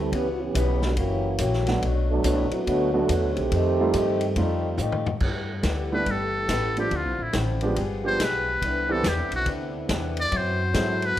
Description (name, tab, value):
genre	jazz, big band swing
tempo	141 BPM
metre	4/4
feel	swing 64% on 8ths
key	G major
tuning	A4 = 439 Hz
part	dark trombone section	second line	0.0-4.8 s	D3 to A4	-25 LUFS	right 3 dB	none
part	upright bass	bass	0.0-11.2 s	F#1 to A2	-27 LUFS	equal	none
part	picked acoustic archtop guitar	accompaniment	0.1-11.0 s	F#2 to A4	-32 LUFS	left 6 dB	none
part	vintage drum kit	drums	0.1-11.2 s	crash cymbal, hi-hat, kick drum, ride cymbal, snare drum, toms	-31 LUFS	equal	none
part	warm concert grand piano	accompaniment	1.7-11.2 s	E3 to A4	-29 LUFS	right 2 dB	none
part	mellow trombone section	sustained chords	5.2-11.2 s	D3 to G4	-35 LUFS	equal	none
part	trumpet with metal mute	melody	5.9-11.2 s	E4 to D5	-26 LUFS	left 1 dB	none
room	light reverb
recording	none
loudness	-22 LUFS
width	side -12 dB against mid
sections	0.0-5.2 A section; 5.2-11.2 B section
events	trombone section solo 0.0-5.2; drum fill 4.8-5.2; muted trumpet solo 5.2-11.2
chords	0.1 C#m7b5; 1.0 F#7b9; 1.8 Bm7; 3.5 F9; 5.2 G69; 6.9 Dm9; 7.8 G7b9; 8.6 Cmaj9; 10.3 F#m7b5